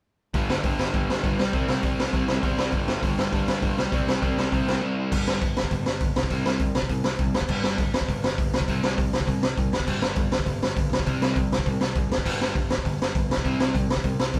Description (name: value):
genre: punk rock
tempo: 202 BPM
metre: 4/4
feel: straight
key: unclear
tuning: A4 = 439 Hz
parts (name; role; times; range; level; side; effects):
- crunchy overdriven guitar; riff; 0.3-5.1 s; G2 to C4; -32 LUFS; equal; none
- overdriven semi-hollow guitar; riff; 0.3-14.4 s; G2 to C4; -31 LUFS; equal; none
- modern bright picked electric bass; bass; 0.3-14.4 s; G1 to E2; -35 LUFS; equal; none
- raw garage drum kit; drums; 0.3-14.4 s; crash cymbal, hi-hat, kick drum, snare drum; -27 LUFS; equal; none
room: light reverb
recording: band playing live in one room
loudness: -25 LUFS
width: mono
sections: 0.3-5.1 A section; 5.1-14.4 B section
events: break 4.8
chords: 0.3 G5; 1.4 C5; 2.7 G5; 3.8 C5; 5.1 G5; 6.2 C5; 7.5 G5; 8.5 C5; 9.9 G5; 10.9 C5; 12.3 G5; 13.3 C5